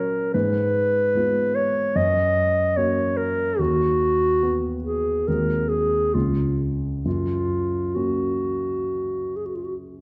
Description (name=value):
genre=classical, romantic duo for clarinet and grand piano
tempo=66-74 BPM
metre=4/4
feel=rubato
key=F# major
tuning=A4 = 440 Hz
part: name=dark clarinet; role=melody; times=0.0-9.7 s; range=E#4 to D#5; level=-24 LUFS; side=equal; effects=none
part: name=dark concert grand piano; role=accompaniment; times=0.0-10.0 s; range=C#2 to F#4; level=-28 LUFS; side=equal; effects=none
room=wet recital hall reverb, RT60 1.6 s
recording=dark, warm production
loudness=-23 LUFS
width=mono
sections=0.0-10.0 A section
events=none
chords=0.3 Fdim/Ab; 2.0 F#; 3.6 B/D#; 5.3 G#7/D#; 6.1 C#; 7.0 F#